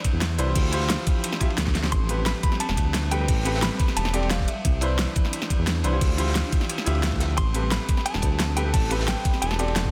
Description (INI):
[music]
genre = liquid drum and bass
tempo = 176 BPM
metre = 4/4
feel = straight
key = A minor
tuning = A4 = 440 Hz
[part]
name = clear grand piano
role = accompaniment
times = 0.0-9.9 s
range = C4 to E5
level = -33 LUFS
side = equal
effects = tape echo
[part]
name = shimmering ambient pad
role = sustained chords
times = 0.0-9.9 s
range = E3 to E5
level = -38 LUFS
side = equal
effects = none
[part]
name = crunchy breakbeat drum kit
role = drums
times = 0.0-9.9 s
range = hi-hat, ride cymbal, snare drum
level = -36 LUFS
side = equal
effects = high-pass filter on hats, studio reverb, high-pass filter on cymbals, high-pass filter on snare, high-pass filter on room
[part]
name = electronic kick drum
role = drums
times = 0.0-9.9 s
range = none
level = -26 LUFS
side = equal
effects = studio reverb
[part]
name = pop drum kit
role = drums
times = 0.0-9.8 s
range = hi-hat, snare drum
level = -30 LUFS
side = equal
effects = studio reverb
[part]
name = smooth synth bass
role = bass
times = 0.1-9.9 s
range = E1 to E2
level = -28 LUFS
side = equal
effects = none
[part]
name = direct-recorded clean electric guitar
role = melody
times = 1.9-5.2, 7.4-9.9 s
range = E5 to C6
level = -34 LUFS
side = equal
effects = tape echo
[sound]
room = light reverb, small room ambience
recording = dense, heavily limited modern master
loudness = -24 LUFS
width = mono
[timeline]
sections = 0.0-9.9 A section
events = drum fill 1.7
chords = 0.0 Cmaj9; 0.6 Dm11; 1.9 Am9; 4.5 Cmaj9; 6.0 Dm11; 7.4 Am9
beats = 0.22 | 0.56 0.90 1.24 1.58 | 1.92 2.26 2.60 2.94 | 3.29 3.63 3.97 4.31 | 4.65 4.99 5.33 5.67 | 6.01 6.35 6.70 7.04 | 7.38 7.72 8.06 8.40 | 8.74 9.08 9.42 9.76